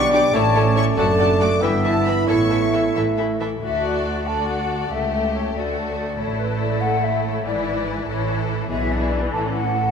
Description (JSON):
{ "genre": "quick classical-period movement for symphony orchestra", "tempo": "94 BPM (dotted quarters)", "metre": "6/8", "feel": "rubato", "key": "D major", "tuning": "A4 = 440 Hz", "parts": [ { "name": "clear chamber violin section", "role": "melody", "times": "0.0-9.9 s", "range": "G#4 to D6", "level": "-29 LUFS", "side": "left 3 dB", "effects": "none" }, { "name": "mellow oboe", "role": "second line", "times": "0.0-3.4 s", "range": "C#5 to E5", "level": "-27 LUFS", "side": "equal", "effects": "none" }, { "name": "warm clarinet", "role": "second line", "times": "0.0-3.3 s", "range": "C#5 to E5", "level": "-25 LUFS", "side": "left 5 dB", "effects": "none" }, { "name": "warm bassoon", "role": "accompaniment", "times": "0.0-3.4 s", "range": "G3 to B3", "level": "-24 LUFS", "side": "right 1 dB", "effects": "none" }, { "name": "mellow French horn section", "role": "sustained chords", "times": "0.0-3.4 s", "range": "G3 to E4", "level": "-22 LUFS", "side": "right 2 dB", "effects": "none" }, { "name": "clear chamber cello section", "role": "bass", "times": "0.0-9.9 s", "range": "C#2 to B2", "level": "-28 LUFS", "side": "right 1 dB", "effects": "none" }, { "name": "clear chamber double bass section", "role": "bass", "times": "0.0-9.9 s", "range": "F#1 to D2", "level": "-25 LUFS", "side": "right 4 dB", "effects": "none" }, { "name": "clear chamber violin section", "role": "second line", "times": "0.1-9.9 s", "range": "G#3 to E5", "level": "-29 LUFS", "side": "left 4 dB", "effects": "none" }, { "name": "clear studio viola section", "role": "accompaniment", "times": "0.1-9.9 s", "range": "E3 to G4", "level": "-27 LUFS", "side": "left 1 dB", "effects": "none" }, { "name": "small flute group", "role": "second line", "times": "3.6-9.9 s", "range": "B4 to A5", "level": "-25 LUFS", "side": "left 3 dB", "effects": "none" } ], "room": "wet scoring stage reverb, RT60 2.1 s", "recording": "minimal, uncompressed stereo recording", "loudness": "-18 LUFS", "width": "side -6 dB against mid", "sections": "0.0-3.6 A section; 3.6-9.9 B section", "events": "none", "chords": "0.3 A; 1.0 D/F#; 1.6 Em/G; 2.3 A; 3.6 D; 4.9 A7/C#; 5.5 D; 6.2 A5; 7.4 E7/G#; 8.1 A; 8.7 E7/B; 9.3 A" }